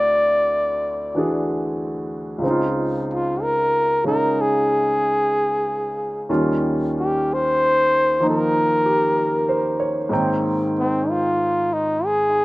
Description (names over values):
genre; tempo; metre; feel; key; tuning
jazz ballad; 62 BPM; 4/4; swing 67% on 8ths; Ab major; A4 = 440 Hz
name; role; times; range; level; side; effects
warm flugelhorn; melody; 0.0-12.4 s; C4 to D5; -18 LUFS; equal; slapback echo
clear baby grand piano; accompaniment; 0.0-12.4 s; Db2 to G5; -22 LUFS; equal; slapback echo
room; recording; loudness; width
little or no reverb; recorded outdoors, with no room sound; -18 LUFS; side -20 dB against mid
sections
0.0-12.4 A section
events
none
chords
0.0 D9; 2.4 Dbmaj7; 6.3 Eb9; 10.1 Abmaj9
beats
0.50 1.46 | 2.43 3.40 4.36 5.33 | 6.29 7.25 8.20 9.15 | 10.10 11.05 11.99